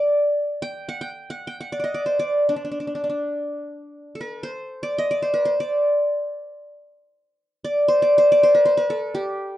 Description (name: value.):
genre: Turkish makam ensemble.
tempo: free time.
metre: none.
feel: none.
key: D makam hicaz.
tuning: A4 = 440 Hz.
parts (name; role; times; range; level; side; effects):
qanun; solo; 0.0-9.6 s; D4 to G5; -19 LUFS; equal; none.
room: light reverb.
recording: rough home demo mix, nothing above 10.6 kHz.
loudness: -18 LUFS.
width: side -13 dB against mid.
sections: 0.0-3.9 A section; 3.9-9.6 A section.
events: none.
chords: none.